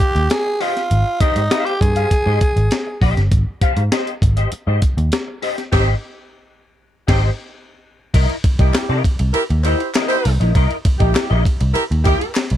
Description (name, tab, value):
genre	funk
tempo	100 BPM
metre	4/4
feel	straight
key	unclear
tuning	A4 = 439 Hz
part	growling tenor saxophone	melody	0.0-3.0 s	Eb4 to Ab4	-19 LUFS	right 1 dB	none
part	semi-hollow electric guitar	accompaniment	0.0-12.4 s	E4 to F5	-24 LUFS	left 4 dB	ensemble chorus
part	breakbeat sampler-style drum kit	drums	0.0-12.6 s	crash cymbal, hi-hat, kick drum, ride cymbal, snare drum	-18 LUFS	equal	none
part	vintage muted picked electric bass	bass	0.2-12.6 s	G1 to C3	-16 LUFS	equal	none
part	warm horn section	second line	5.7-12.3 s	G3 to C5	-22 LUFS	right 2 dB	none
part	group handclap	percussion	8.7-12.5 s	none	-30 LUFS	left 3 dB	none
room	little or no reverb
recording	dark, warm production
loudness	-15 LUFS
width	side -12 dB against mid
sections	0.0-8.1 A section; 8.1-12.6 B section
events	band accent 5.7-8.1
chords	0.0 Abmaj7; 8.1 C7#9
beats	0.30 | 0.90 1.51 2.11 2.71 | 3.32 3.92 4.52 5.12 | 5.73 6.33 6.93 7.54 | 8.14 8.74 9.35 9.95 | 10.55 11.15 11.76 12.36